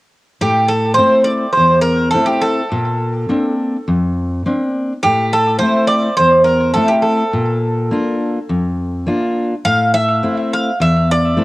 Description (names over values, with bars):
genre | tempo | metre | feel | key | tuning
greek folk | 104 BPM | 4/4 | straight | A phrygian | A4 = 443 Hz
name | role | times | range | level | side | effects
Greek bouzouki | melody | 0.4-11.4 s | G4 to F5 | -14 LUFS | right 1 dB | tape echo
fingerpicked steel-string acoustic guitar | accompaniment | 0.4-11.4 s | E2 to F4 | -16 LUFS | left 1 dB | cassette tape
room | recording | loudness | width
moderate spring reverb, RT60 1.3 s | home recording on cassette | -13 LUFS | side -19 dB against mid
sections
0.4-11.4 A section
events
none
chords
0.4 Am; 2.7 Bbadd9; 5.0 Am; 7.3 Bb; 9.6 Am